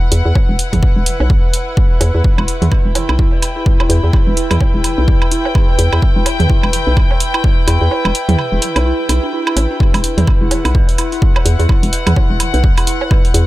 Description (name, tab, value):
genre	minimal techno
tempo	127 BPM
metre	4/4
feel	swing 59% on 16ths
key	E minor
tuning	A4 = 441 Hz
part	dark chamber string section	texture	0.0-13.5 s	E4 to G5	-21 LUFS	equal	sidechain pumping
part	hollow knocking FM bass	bass	0.1-13.4 s	E1 to E2	-14 LUFS	equal	sidechain pumping
part	electronic hi-hat	drums	0.1-13.5 s	none	-21 LUFS	right 1 dB	none
part	electronic kick drum	drums	0.4-13.2 s	none	-13 LUFS	equal	none
part	electronic woodblock and toms	percussion	0.4-13.2 s	none	-20 LUFS	right 4 dB	digital delay
part	dark detuned synth bell	riff	2.4-13.4 s	D4 to B4	-22 LUFS	equal	chorus, phaser, vintage 12-bit sampler grit, sidechain pumping, dub echo
room	little or no reverb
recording	none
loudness	-11 LUFS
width	side -17 dB against mid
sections	0.0-13.5 A section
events	break 7.9-9.8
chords	0.0 E5